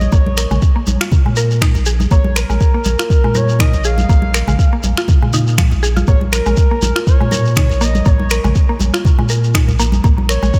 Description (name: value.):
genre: afro house.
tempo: 121 BPM.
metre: 4/4.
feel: swing 55% on 16ths.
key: Bb minor.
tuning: A4 = 439 Hz.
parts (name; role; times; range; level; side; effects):
expressive portamento lead; melody; 0.0-10.6 s; Bb4 to F5; -26 LUFS; equal; subtle chorus, cassette tape, analog delay.
warm sub bass; bass; 0.0-10.5 s; Bb1 to Bb2; -18 LUFS; equal; sidechain pumping.
congas; percussion; 0.0-10.5 s; none; -25 LUFS; equal; none.
shekere; percussion; 0.0-10.6 s; none; -28 LUFS; equal; none.
mallet-like synth pluck; arpeggios; 0.1-10.5 s; F3 to Bb4; -24 LUFS; equal; chorus, sidechain pumping, analog delay.
electronic kick drum; drums; 0.1-10.6 s; none; -15 LUFS; equal; none.
afro-pop drum kit; drums; 0.4-10.4 s; finger snaps, toms; -25 LUFS; equal; none.
room: light reverb, digital ambience.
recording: none.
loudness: -14 LUFS.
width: mono.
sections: 0.0-10.6 A section.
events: none.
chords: 0.0 Bbm7.